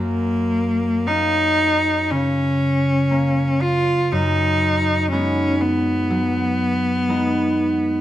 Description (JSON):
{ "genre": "classical, romantic duo for cello and harp", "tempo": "60 BPM", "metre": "4/4", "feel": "rubato", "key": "F# major", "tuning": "A4 = 439 Hz", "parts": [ { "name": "clear cello", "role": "melody", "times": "0.0-8.0 s", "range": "A#3 to E#4", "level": "-19 LUFS", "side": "left 1 dB", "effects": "none" }, { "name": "concert harp", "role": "accompaniment", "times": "0.0-8.0 s", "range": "F#2 to F#4", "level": "-21 LUFS", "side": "right 1 dB", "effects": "none" } ], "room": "moderate recital hall reverb, RT60 1.6 s", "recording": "close, detailed microphones", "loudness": "-17 LUFS", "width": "side -13 dB against mid", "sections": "0.0-8.0 A section", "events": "none", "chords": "0.0 F#; 4.1 G#m7/F#" }